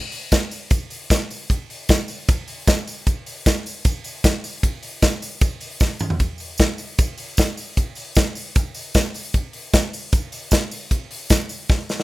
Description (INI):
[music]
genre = indie pop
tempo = 153 BPM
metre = 4/4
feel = straight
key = none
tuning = none
[part]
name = modern studio drum kit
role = drums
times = 0.1-12.0 s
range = hi-hat, kick drum, ride cymbal, snare drum, toms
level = -19 LUFS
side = equal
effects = none
[part]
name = tambourine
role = percussion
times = 0.3-12.0 s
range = none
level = -32 LUFS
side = right 2 dB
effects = none
[sound]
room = light reverb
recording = rough home demo mix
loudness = -19 LUFS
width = side -19 dB against mid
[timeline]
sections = 0.0-12.0 A section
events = drum fill 5.8-6.2, 11.7-12.0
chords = none